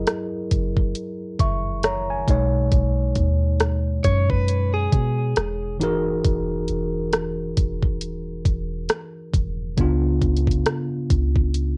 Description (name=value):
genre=contemporary R&B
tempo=68 BPM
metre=4/4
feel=swing 58% on 16ths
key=B major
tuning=A4 = 442 Hz
part: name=tine electric piano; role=accompaniment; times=0.0-11.8 s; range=B2 to C#6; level=-28 LUFS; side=equal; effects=cassette tape
part: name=soft 808-style bass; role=bass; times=0.0-11.8 s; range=D#1 to B2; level=-26 LUFS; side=equal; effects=none
part: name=trap drum kit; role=drums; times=0.1-11.8 s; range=hi-hat, kick drum, rim click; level=-24 LUFS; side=equal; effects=cassette tape
part: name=direct-recorded clean electric guitar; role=arpeggios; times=4.0-5.8 s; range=G#4 to C#5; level=-28 LUFS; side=equal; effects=cassette tape, tape echo
room=light reverb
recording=home recording on cassette, nothing above 10.9 kHz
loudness=-22 LUFS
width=mono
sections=0.0-11.8 A section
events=none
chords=0.0 F#13; 2.3 B69; 5.8 Emaj9#11; 9.8 C#7b9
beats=0.07 0.95 1.83 | 2.72 3.60 4.48 5.36 | 6.25 7.13 8.01 8.89 | 9.78 10.66 11.54